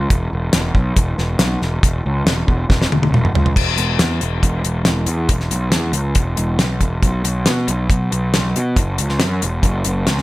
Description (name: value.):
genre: classic rock.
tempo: 138 BPM.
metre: 4/4.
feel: straight.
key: unclear.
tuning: A4 = 440 Hz.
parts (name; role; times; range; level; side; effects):
fuzz picked electric bass; bass; 0.0-10.2 s; E1 to B2; -18 LUFS; equal; overdrive.
damped 70s drum kit; drums; 0.1-10.2 s; crash cymbal, hi-hat, kick drum, snare drum, toms; -17 LUFS; equal; none.
room: light reverb.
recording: none.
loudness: -15 LUFS.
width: side -17 dB against mid.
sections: 0.0-3.5 A section; 3.5-10.2 B section.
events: drum fill 2.7-3.5.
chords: none.